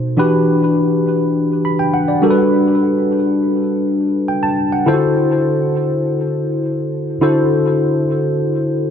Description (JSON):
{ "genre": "pop", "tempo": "102 BPM", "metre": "4/4", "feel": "straight", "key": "unclear", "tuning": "A4 = 440 Hz", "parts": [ { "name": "tine electric piano", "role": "solo", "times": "0.0-8.9 s", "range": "B2 to B5", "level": "-14 LUFS", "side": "left 1 dB", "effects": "overdrive, analog chorus, ping-pong delay" } ], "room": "moderate plate reverb, RT60 3.4 s", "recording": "dark, warm production", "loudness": "-14 LUFS", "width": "side -8 dB against mid", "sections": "0.0-7.2 A section; 7.2-8.9 B section", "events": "none", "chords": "0.2 Em9; 2.2 Gmaj9; 4.9 D9" }